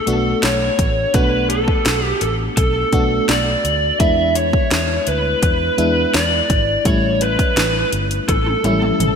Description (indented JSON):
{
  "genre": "1980s-style pop",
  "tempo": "84 BPM",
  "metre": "4/4",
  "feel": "straight",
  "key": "B minor",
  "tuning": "A4 = 440 Hz",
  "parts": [
    { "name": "lead guitar through a small cranked amp", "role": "melody", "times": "0.0-9.2 s", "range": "A4 to E5", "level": "-18 LUFS", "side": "equal", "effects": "overdrive, lush chorus" },
    { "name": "FM electric piano", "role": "accompaniment", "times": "0.0-9.2 s", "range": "G3 to F#4", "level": "-22 LUFS", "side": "left 1 dB", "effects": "chorus" },
    { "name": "vintage muted fingered electric bass", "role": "bass", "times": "0.1-9.2 s", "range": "G1 to E2", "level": "-23 LUFS", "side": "equal", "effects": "none" },
    { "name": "house drum kit", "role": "drums", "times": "0.1-9.2 s", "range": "hi-hat, kick drum, snare drum, toms", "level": "-19 LUFS", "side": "equal", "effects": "overdrive, gated reverb" }
  ],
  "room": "moderate lush hall reverb, RT60 2.8 s",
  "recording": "bright 1980s-style digital production",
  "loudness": "-14 LUFS",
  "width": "side -6 dB against mid",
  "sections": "0.0-9.2 A section",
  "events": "drum fill 8.3-9.2",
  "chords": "0.0 Bm7; 4.0 E7; 6.9 A7"
}